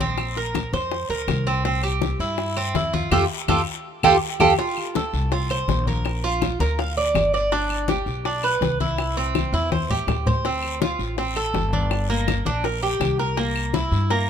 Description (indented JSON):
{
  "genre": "latin, Cuban son and guajira",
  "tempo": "164 BPM",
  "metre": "4/4",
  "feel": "straight",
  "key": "F major",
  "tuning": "A4 = 440 Hz",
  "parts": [
    { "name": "Cuban tres", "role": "arpeggios", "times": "0.0-14.3 s", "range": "Bb3 to F5", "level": "-23 LUFS", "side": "right 3 dB", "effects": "none" },
    { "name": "upright bass", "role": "bass", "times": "0.0-14.3 s", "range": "G1 to G2", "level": "-26 LUFS", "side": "equal", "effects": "none" },
    { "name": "congas", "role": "percussion", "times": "0.0-14.3 s", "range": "none", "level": "-27 LUFS", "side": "left 4 dB", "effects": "none" },
    { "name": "guiro", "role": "percussion", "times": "0.0-14.3 s", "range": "none", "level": "-36 LUFS", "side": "left 8 dB", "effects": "none" },
    { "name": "bongos", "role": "percussion", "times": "0.2-14.3 s", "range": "none", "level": "-29 LUFS", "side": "left 10 dB", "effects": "none" },
    { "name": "claves", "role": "percussion", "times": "0.2-13.7 s", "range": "none", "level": "-33 LUFS", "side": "left 2 dB", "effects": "none" }
  ],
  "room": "light reverb",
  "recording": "minimal, uncompressed stereo recording",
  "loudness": "-20 LUFS",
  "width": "side -8 dB against mid",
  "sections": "0.0-4.6 A section; 4.6-14.3 B section",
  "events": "band accent 3.1-4.6; drum fill 3.5-4.6, 9.3-10.4",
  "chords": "0.2 Bbsus2; 1.7 C; 3.1 Fadd9; 4.6 F; 6.1 Bb; 7.5 G; 9.0 C; 10.4 Dm7; 11.9 Gm; 13.4 C7"
}